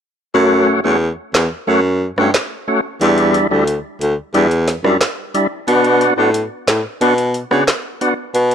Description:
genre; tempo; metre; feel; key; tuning
dancehall; 90 BPM; 4/4; straight; unclear; A4 = 440 Hz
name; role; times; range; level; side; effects
percussive tonewheel organ; accompaniment; 0.3-8.1 s; G3 to F#4; -16 LUFS; equal; overdrive, fast rotary speaker
warm baritone saxophone; bass; 0.3-8.5 s; D2 to C#3; -15 LUFS; equal; none
afro-pop drum kit; drums; 1.3-8.5 s; handclaps, hi-hat, rim click, snare drum; -19 LUFS; equal; none
room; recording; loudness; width
digital ambience; dry, gritty hardware recording; -13 LUFS; side -8 dB against mid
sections
0.3-8.5 A section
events
kick muted 0.3-8.5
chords
0.3 F#m; 3.0 Em7; 5.7 Bm

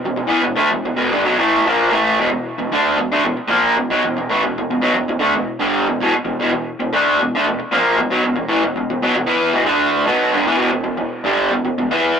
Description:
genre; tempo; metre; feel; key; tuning
rock; 114 BPM; 4/4; straight; unclear; A4 = 440 Hz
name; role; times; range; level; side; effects
raw garage guitar; solo; 0.0-12.2 s; E2 to E4; -15 LUFS; equal; overdrive, analog delay
room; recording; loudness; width
moderate studio reverb, RT60 0.5 s; rough rehearsal-room recording, tube saturation; -15 LUFS; side -7 dB against mid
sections
0.0-2.2 A section; 2.2-10.6 B section; 10.6-12.2 C section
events
none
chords
0.0 E5

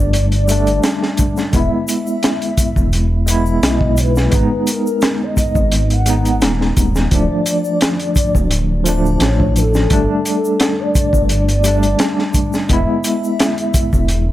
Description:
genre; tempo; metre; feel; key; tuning
trip hop; 86 BPM; 4/4; swing 54% on 16ths; unclear; A4 = 440 Hz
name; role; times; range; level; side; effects
pure breathy sine lead; melody; 0.0-14.0 s; A4 to F#5; -22 LUFS; left 1 dB; ensemble chorus, tape echo
tine electric piano; accompaniment; 0.0-14.3 s; F3 to E4; -18 LUFS; equal; medium stereo tremolo, low-pass filter
dark detuned saw bass; bass; 0.0-14.3 s; D1 to B1; -16 LUFS; equal; none
crunchy breakbeat drum kit; drums; 0.1-14.3 s; hi-hat, kick drum, snare drum; -17 LUFS; equal; none
tube shaker and triangle; percussion; 0.1-14.2 s; none; -31 LUFS; left 2 dB; none
room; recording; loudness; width
light reverb, small room ambience; none; -13 LUFS; side -14 dB against mid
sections
0.0-14.3 A section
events
none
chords
0.0 Gsus2; 1.5 E; 4.3 G#m; 7.1 Dm; 9.9 Gsus2; 12.7 E

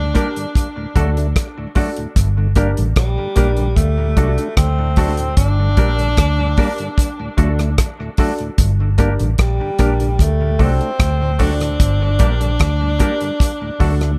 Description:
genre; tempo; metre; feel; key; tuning
roots reggae; 75 BPM; 4/4; straight; G harmonic minor; A4 = 441 Hz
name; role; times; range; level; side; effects
warm tenor saxophone; melody; 0.0-14.2 s; G3 to D4; -26 LUFS; equal; dub echo
tonewheel organ; accompaniment; 0.0-14.1 s; D2 to D4; -30 LUFS; equal; stopped rotary speaker, dub echo
vintage muted fingered electric bass; bass; 0.0-14.2 s; G1 to D2; -19 LUFS; equal; none
semi-hollow electric guitar; accompaniment; 0.1-13.9 s; A3 to Bb4; -30 LUFS; equal; dub echo
damped 70s drum kit; drums; 0.1-14.2 s; hi-hat, kick drum, rim click; -18 LUFS; equal; none
warm upright piano; stabs; 0.2-14.1 s; D4 to D5; -28 LUFS; equal; none
room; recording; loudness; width
light reverb; echo-heavy mix; -17 LUFS; mono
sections
0.0-14.2 A section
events
none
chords
0.0 Gm; 0.6 D; 2.2 Gm; 3.8 D; 5.4 Gm; 7.0 D; 8.6 Gm; 10.2 D; 11.8 Gm; 13.4 D

